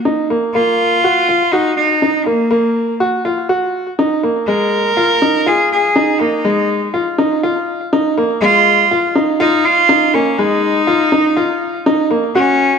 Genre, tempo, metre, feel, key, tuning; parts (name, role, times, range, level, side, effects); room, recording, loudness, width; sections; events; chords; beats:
electronica; 122 BPM; 4/4; straight; A4 = 436 Hz
rich cello; melody; 0.0-12.8 s; Bb3 to Bb4; -14 LUFS; equal
clear upright piano; riff; 0.1-12.8 s; Ab3 to Gb4; -15 LUFS; equal
wet echo chamber reverb, RT60 1.3 s; -12 LUFS; side -6 dB against mid
0.0-12.3 A section
build-up 0.0-12.3
0.0 Ebmadd9; 4.5 Db69/Ab (rootless)
0.05 | 0.55 1.04 1.53 2.02 | 2.51 3.00 3.50 3.99 | 4.48 4.97 5.46 5.95 | 6.45 6.94 7.43 7.92 | 8.41 8.90 9.40 9.89 | 10.38 10.87 11.36 11.86 | 12.35